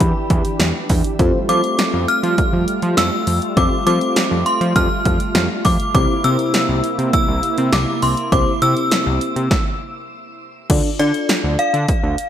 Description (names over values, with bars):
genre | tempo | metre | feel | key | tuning
synth-pop | 101 BPM | 4/4 | straight | unclear | A4 = 440 Hz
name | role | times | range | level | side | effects
synth chime | melody | 0.0-12.3 s | D5 to F6 | -21 LUFS | equal | ensemble chorus, tremolo, shimmer reverb, ping-pong delay
warm analog pad | sustained chords | 0.0-9.5 s | C3 to G4 | -24 LUFS | right 1 dB | chorus, shimmer reverb
fat analog bass | bass | 0.0-12.2 s | C2 to F3 | -19 LUFS | equal | none
punchy analog drum machine | drums | 0.0-12.3 s | crash cymbal, hi-hat, kick drum, snare drum | -19 LUFS | equal | gated reverb
mellow FM electric piano | accompaniment | 1.2-11.8 s | C4 to D5 | -24 LUFS | left 3 dB | chorus, shimmer reverb
room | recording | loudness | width
moderate plate reverb, RT60 1.9 s | bright 1980s-style digital production | -15 LUFS | side -10 dB against mid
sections
0.0-10.7 A section; 10.7-12.3 A section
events
stop 9.5-10.7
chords
0.0 Em7; 1.2 Fadd9; 5.9 C7; 10.7 Dm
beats
0.00 0.60 | 1.19 1.79 2.38 2.98 | 3.57 4.16 4.76 5.35 | 5.95 6.54 7.13 7.73 | 8.32 8.91 9.51 10.10 | 10.70 11.29 11.89